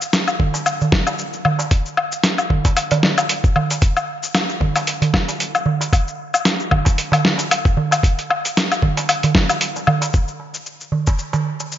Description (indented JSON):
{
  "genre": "downtempo",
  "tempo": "114 BPM",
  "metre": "4/4",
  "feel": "swing 55% on 16ths",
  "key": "none",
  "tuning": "none",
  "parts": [
    { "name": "dusty soul sampler-style drum kit", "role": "drums", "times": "0.0-11.8 s", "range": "cabasa, hi-hat, snare drum, woodblock", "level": "-18 LUFS", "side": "left 2 dB", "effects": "overdrive" },
    { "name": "electronic kick drum", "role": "drums", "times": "0.4-11.2 s", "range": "none", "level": "-16 LUFS", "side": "equal", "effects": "overdrive" },
    { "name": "darbuka", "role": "percussion", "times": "0.4-11.7 s", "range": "none", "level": "-22 LUFS", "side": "right 4 dB", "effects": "none" }
  ],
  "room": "moderate plate reverb, RT60 1.9 s",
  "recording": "dreamy mix soaked in reverb, nothing above 7.5 kHz",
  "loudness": "-16 LUFS",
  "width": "side -11 dB against mid",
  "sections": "0.0-10.1 A section; 10.1-11.8 B section",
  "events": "none",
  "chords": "none",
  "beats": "0.14 0.66 1.19 | 1.72 2.24 2.77 3.29 | 3.82 4.35 4.87 5.40 | 5.92 6.45 6.98 7.50 | 8.03 8.56 9.08 9.61 | 10.14 10.66 11.19 11.71"
}